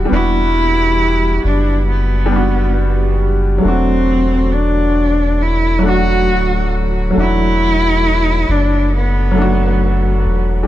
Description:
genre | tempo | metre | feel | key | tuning
trip hop | 68 BPM | 4/4 | swing 56% on 16ths | unclear | A4 = 441 Hz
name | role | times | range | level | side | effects
felt-muted upright piano | accompaniment | 0.0-10.7 s | F#3 to F#4 | -18 LUFS | equal | harmonic tremolo, tape echo
soft dub sub bass | bass | 0.0-10.6 s | D1 to F#1 | -16 LUFS | equal | none
rich cello | melody | 0.1-10.2 s | B3 to F#4 | -17 LUFS | equal | tape echo
room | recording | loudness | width
small room ambience | none | -12 LUFS | side -13 dB against mid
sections
0.0-10.7 A section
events
none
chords
0.0 Em7; 3.6 D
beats
| 0.10 0.98 1.86 2.75 | 3.63 4.51 5.39 6.28 | 7.16 8.04 8.92 9.80

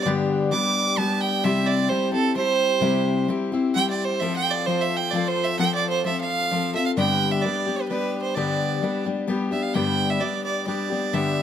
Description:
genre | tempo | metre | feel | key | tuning
country | 130 BPM | 3/4 | straight | unclear | A4 = 440 Hz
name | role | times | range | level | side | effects
clear fiddle | melody | 0.0-11.4 s | A4 to D6 | -24 LUFS | right 5 dB | none
picked steel-string acoustic guitar | accompaniment | 0.0-11.4 s | G2 to A4 | -23 LUFS | left 4 dB | none
room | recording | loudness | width
moderate plate reverb, RT60 2.6 s | none | -21 LUFS | side -9 dB against mid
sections
0.0-7.0 A section; 7.0-11.4 B section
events
fiddle solo 0.0-7.0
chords
0.0 G; 1.4 C; 4.2 F; 7.0 G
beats
| 0.05 0.51 0.97 | 1.44 1.90 2.36 | 2.82 3.28 3.75 | 4.21 4.67 5.13 | 5.59 6.05 6.51 | 6.98 7.44 7.90 | 8.36 8.82 9.29 | 9.75 10.21 10.67 | 11.13

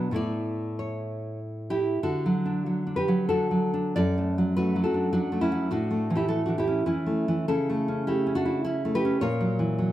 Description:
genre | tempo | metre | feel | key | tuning
romantic piece for solo classical guitar | 84-106 BPM | 3/4 | rubato | D major | A4 = 439 Hz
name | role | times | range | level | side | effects
nylon-string guitar | solo | 0.0-9.9 s | F#2 to D5 | -24 LUFS | equal | none
room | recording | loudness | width
moderate recital hall reverb, RT60 1.3 s | none | -24 LUFS | side -13 dB against mid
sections
0.0-2.0 A section; 2.0-9.9 B section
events
none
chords
0.2 A; 2.0 D; 4.0 D/F#; 5.7 A; 7.5 A/C#; 9.2 F#7/A#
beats
| 0.16 0.79 1.41 | 2.03 2.67 3.28 | 3.96 4.56 5.13 | 5.71 6.30 6.88 | 7.49 8.07 8.65 | 9.22 9.78

